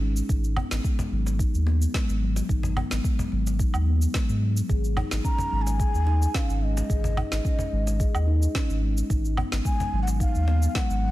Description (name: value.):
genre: organic downtempo.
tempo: 109 BPM.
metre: 4/4.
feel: swing 53% on 16ths.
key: G# dorian.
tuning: A4 = 440 Hz.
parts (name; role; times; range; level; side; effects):
steel tongue drum; arpeggios; 0.0-11.1 s; F#3 to G#4; -31 LUFS; left 2 dB; tape echo.
warm sub bass; bass; 0.0-11.1 s; G#1 to G#2; -24 LUFS; equal; tube saturation, sidechain pumping.
electronic shaker, woodblock and snare drum; drums; 0.2-11.0 s; none; -34 LUFS; right 2 dB; none.
electronic kick drum; drums; 0.3-10.9 s; none; -26 LUFS; equal; none.
cajon; percussion; 0.6-10.6 s; none; -34 LUFS; left 2 dB; none.
breathy mellow bansuri; melody; 5.2-11.1 s; D#5 to A#5; -32 LUFS; equal; vintage 12-bit sampler grit, tape echo.
room: studio ambience.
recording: dense, heavily limited modern master.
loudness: -22 LUFS.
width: side -16 dB against mid.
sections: 0.0-11.1 A section.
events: none.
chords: 0.3 G#m7; 4.7 C#sus2/G#; 9.1 G#m7.